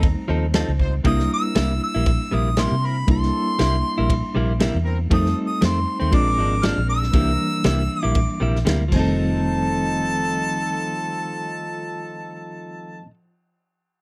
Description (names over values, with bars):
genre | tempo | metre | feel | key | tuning
straight-eighth soul blues | 118 BPM | 4/4 | swing 54% on 16ths | F mixolydian | A4 = 441 Hz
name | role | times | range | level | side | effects
warm harmonica | melody | 0.0-13.0 s | A5 to F6 | -29 LUFS | equal | none
mellow reed electric piano | accompaniment | 0.0-13.1 s | Eb3 to E4 | -29 LUFS | equal | fast tremolo
direct-recorded clean electric guitar | stabs | 0.0-13.1 s | F2 to A4 | -29 LUFS | equal | spring reverb, slapback echo
vintage muted fingered electric bass | bass | 0.0-13.0 s | F1 to C3 | -25 LUFS | equal | none
warm soul drum kit | drums | 0.0-9.1 s | crash cymbal, kick drum, ride cymbal, snare drum | -24 LUFS | equal | none
clear horn section | sustained chords | 0.8-13.0 s | C4 to C5 | -37 LUFS | equal | none
room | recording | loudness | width
little or no reverb | none | -21 LUFS | mono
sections
0.0-9.2 A section; 9.2-13.2 B section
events
none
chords
0.0 F7; 1.1 C7; 5.1 F7; 6.1 Bb7; 7.1 C7; 8.9 F7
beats
0.04 0.55 | 1.05 1.56 2.07 2.58 | 3.08 3.59 4.10 4.61 | 5.12 5.62 6.13 6.64 | 7.15 7.66 8.16 8.67 | 9.18 9.69 10.20 10.71 | 11.21 11.72 12.23 12.74